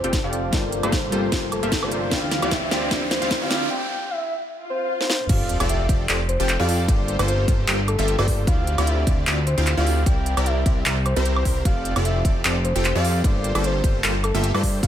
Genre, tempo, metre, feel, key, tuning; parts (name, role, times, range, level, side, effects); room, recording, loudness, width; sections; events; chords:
future bass; 151 BPM; 4/4; swing 55% on 16ths, half-time; F major; A4 = 440 Hz
soft octave-layered synth lead; melody; 0.0-14.9 s; A4 to G5; -28 LUFS; left 1 dB; chorus, sidechain pumping, analog delay
glassy digital keys; accompaniment; 0.0-3.7 s; G3 to A5; -30 LUFS; left 1 dB; chorus, sidechain pumping, analog delay
dark studio string section; sustained chords; 0.0-3.7 s; C3 to G4; -36 LUFS; equal
supersaw stab; riff; 0.0-14.9 s; Bb3 to G5; -26 LUFS; equal; sidechain pumping, low-pass filter, analog delay
fat analog bass; bass; 0.0-14.9 s; F1 to G2; -24 LUFS; equal; sidechain pumping
trap drum kit; drums; 0.0-14.9 s; crash cymbal, handclaps, hi-hat, snare drum, toms, woodblock; -26 LUFS; right 1 dB
riser, swell and sub drop; sound effects; 1.0-6.9 s; -32 LUFS; equal
electronic kick drum; drums; 0.1-14.9 s; -22 LUFS; equal
moderate plate reverb, RT60 1.6 s; dreamy mix soaked in reverb, high-pass filter; -19 LUFS; side -10 dB against mid
0.0-5.3 A section; 5.3-14.9 B section
build-up 0.0-5.3; drum fill 0.0-3.7, 5.0; filter sweep 0.0-5.3; riser 1.0-3.7; break 3.7-5.3; swell 4.6-5.3; drop 5.3-14.9; impact 5.3-6.9
0.0 F69; 0.5 Gm11; 2.1 Dm11; 3.7 N.C.; 5.3 F69; 6.9 Gm11; 8.5 Dm11; 10.1 C9; 11.7 F69; 13.2 Gm11